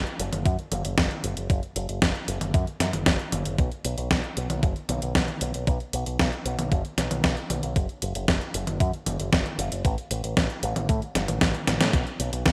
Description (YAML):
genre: italo disco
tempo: 115 BPM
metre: 4/4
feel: straight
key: unclear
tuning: A4 = 440 Hz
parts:
  - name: picked electric bass with an envelope filter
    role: bass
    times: 0.0-12.5 s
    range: F#1 to A2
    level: -32 LUFS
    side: equal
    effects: digital delay
  - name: clean 12-bit digital drum machine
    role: drums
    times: 0.1-12.5 s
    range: hi-hat, snare drum, toms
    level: -29 LUFS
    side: equal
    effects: overdrive, gated reverb
  - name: electronic kick drum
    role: drums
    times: 0.5-12.5 s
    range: none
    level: -27 LUFS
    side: equal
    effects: overdrive
room: light reverb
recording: bright 1980s-style digital production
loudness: -26 LUFS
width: mono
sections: 0.0-11.9 A section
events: drum fill 11.7; band accent 11.8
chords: none